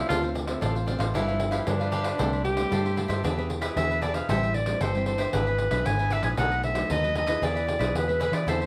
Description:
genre	samba and choro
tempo	115 BPM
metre	4/4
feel	straight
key	A harmonic minor from 4.3 s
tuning	A4 = 439 Hz
part	breathy tenor saxophone	second line	0.0-3.2 s	D4 to G4	-33 LUFS	equal	tape echo
part	cavaquinho	accompaniment	0.0-8.7 s	D4 to G5	-37 LUFS	equal	none
part	nylon-string guitar	accompaniment	0.0-8.7 s	F#2 to A4	-36 LUFS	equal	none
part	vintage muted fingered electric bass	bass	0.0-8.7 s	G1 to E3	-32 LUFS	equal	none
part	pandeiro	percussion	0.1-8.7 s	none	-33 LUFS	equal	none
part	mellow clarinet	melody	3.8-8.7 s	B4 to G#5	-30 LUFS	equal	none
room	moderate large studio reverb, RT60 1.1 s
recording	none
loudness	-26 LUFS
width	mono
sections	0.0-4.3 A section; 4.3-8.7 B section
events	tenor saxophone solo 0.0-4.3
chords	0.1 Dm7; 1.1 G7; 2.2 C6; 3.2 E7; 4.3 Am7; 5.3 E7/G#; 6.4 B7; 7.4 E

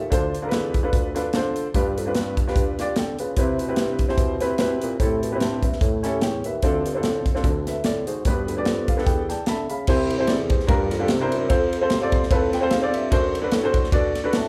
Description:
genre	uptempo gospel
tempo	148 BPM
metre	4/4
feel	swing 55% on 8ths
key	C major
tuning	A4 = 440 Hz
part	warm upright piano	accompaniment	0.0-14.5 s	G2 to C6	-26 LUFS	equal	none
part	mellow bassoon	bass	0.0-14.5 s	C2 to D3	-31 LUFS	equal	none
part	modern studio drum kit	drums	0.1-14.4 s	crash cymbal, hi-hat, kick drum, ride cymbal, snare drum	-26 LUFS	equal	none
room	light reverb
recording	band playing live in one room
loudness	-22 LUFS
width	mono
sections	0.0-9.9 A section; 9.9-14.5 B section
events	upright piano fill 8.7-9.9, 11.9-13.1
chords	0.1 Dm7; 1.7 G7; 3.4 Cmaj7; 5.0 Am7; 5.8 A7; 6.6 Dm7; 7.4 D5; 8.3 G; 9.9 C; 10.7 Gm7; 11.1 C9; 11.5 F; 13.1 D7/F#

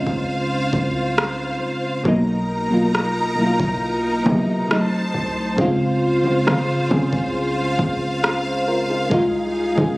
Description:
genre	contemporary R&B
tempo	68 BPM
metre	4/4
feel	straight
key	Db major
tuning	A4 = 441 Hz
part	mellow FM electric piano	accompaniment	0.0-10.0 s	Cb3 to C5	-20 LUFS	equal	chorus
part	rich studio string section	sustained chords	0.0-10.0 s	Eb4 to Bb5	-24 LUFS	equal	sidechain pumping
part	warm 808-style bass	bass	0.0-10.0 s	Cb2 to Db3	-27 LUFS	equal	none
part	smooth R&B drum kit	drums	0.1-10.0 s	kick drum, rim click	-23 LUFS	equal	none
room	moderate lush hall reverb, RT60 2.3 s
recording	recorded on a phone in the room, club reverb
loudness	-18 LUFS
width	side -22 dB against mid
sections	0.0-10.0 A section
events	none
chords	0.0 Dbmaj7; 2.1 Cbmaj7; 4.7 Cdim7; 5.6 Dbmaj7; 9.1 Fm7/C

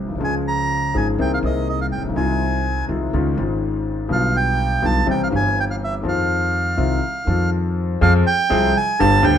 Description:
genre	tango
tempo	123 BPM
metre	4/4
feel	rubato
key	F minor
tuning	A4 = 445 Hz
part	clear concert grand piano	accompaniment	0.0-9.4 s	G1 to Ab4	-21 LUFS	left 3 dB	none
part	upright bass	bass	0.0-9.4 s	G1 to F2	-22 LUFS	right 1 dB	none
part	bandoneon	melody	0.2-9.4 s	Eb5 to Bb5	-21 LUFS	right 3 dB	none
room	moderate large studio reverb, RT60 1.1 s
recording	minimal, uncompressed stereo recording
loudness	-17 LUFS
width	side -9 dB against mid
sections	0.0-8.0 A section; 8.0-9.4 B section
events	none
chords	0.2 Db; 1.2 Abadd9/C; 2.2 Fm7/C; 3.1 Dbadd9; 4.1 G7/B; 5.1 C; 6.1 Fm7; 8.0 Fm

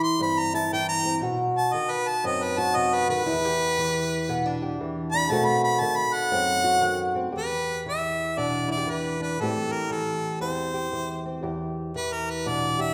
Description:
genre	acoustic country blues, solo or duo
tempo	118 BPM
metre	4/4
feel	swing 64% on 8ths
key	E minor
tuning	A4 = 435 Hz
part	bright harmonica	melody	0.0-12.9 s	A4 to C6	-28 LUFS	equal	none
part	fingerpicked old ladder-braced acoustic guitar	accompaniment	0.0-12.9 s	E2 to G4	-29 LUFS	equal	none
room	wet scoring stage reverb, RT60 1.6 s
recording	none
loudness	-26 LUFS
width	mono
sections	0.0-7.3 A section; 7.3-12.9 B section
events	harmonica solo 0.0-7.3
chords	0.0 C; 1.2 B; 3.3 Em7; 5.3 B7b9; 7.3 Em7; 9.4 Am7; 11.4 Em7

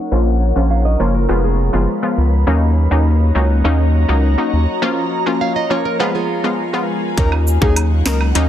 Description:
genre	dancehall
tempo	102 BPM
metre	4/4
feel	straight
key	Eb minor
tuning	A4 = 438 Hz
part	ethereal airy pad	sustained chords	0.0-8.5 s	Eb4 to Cb6	-23 LUFS	left 1 dB	ensemble chorus, built-in reverb, phaser, sidechain pumping, low-pass filter
part	analog pluck	accompaniment	0.1-8.5 s	F3 to F4	-19 LUFS	left 2 dB	chorus, low-pass filter
part	round analog bass	bass	0.1-8.5 s	F1 to Eb2	-14 LUFS	equal	none
part	nylon-string guitar	arpeggios	0.7-7.0 s	F4 to F5	-23 LUFS	right 6 dB	low-pass filter
part	breathy flute-like synth lead	melody	7.2-8.2 s	Ab4 to Bb4	-24 LUFS	left 2 dB	chorus, tremolo
part	island pop drum kit	drums	7.2-8.5 s	hi-hat, kick drum, rim click, snare drum	-17 LUFS	equal	overdrive
part	woodblock and cabasa	percussion	7.3-8.3 s	none	-26 LUFS	right 6 dB	none
room	light reverb, digital ambience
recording	dense, heavily limited modern master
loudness	-13 LUFS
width	side -11 dB against mid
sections	0.0-7.2 A section; 7.2-8.5 B section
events	filter sweep 0.0-7.2; break 4.8-7.2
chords	0.1 Bbm; 1.3 Fdim; 2.5 Ebm7; 4.8 Bbm; 6.0 Fdim; 7.2 Ebm7

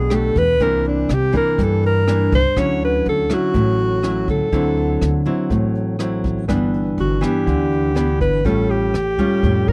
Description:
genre	bossa nova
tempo	122 BPM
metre	4/4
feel	straight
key	D major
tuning	A4 = 439 Hz
part	breathy alto saxophone	melody	0.0-9.7 s	D4 to C#5	-22 LUFS	equal	none
part	nylon-string guitar	accompaniment	0.0-9.7 s	G2 to G4	-22 LUFS	equal	none
part	upright bass	bass	0.0-9.7 s	G1 to G2	-24 LUFS	equal	none
part	jazz brush drum kit	drums	0.1-9.7 s	hi-hat, kick drum, rim click	-29 LUFS	equal	none
room	little or no reverb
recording	dry, close 1970s-style studio recording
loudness	-18 LUFS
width	mono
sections	0.0-2.6 A section; 2.6-9.7 B section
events	alto saxophone solo 0.0-2.6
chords	0.0 Em7; 0.6 C9; 2.6 Dmaj9; 4.5 D9; 6.5 G6; 8.4 Aaug7

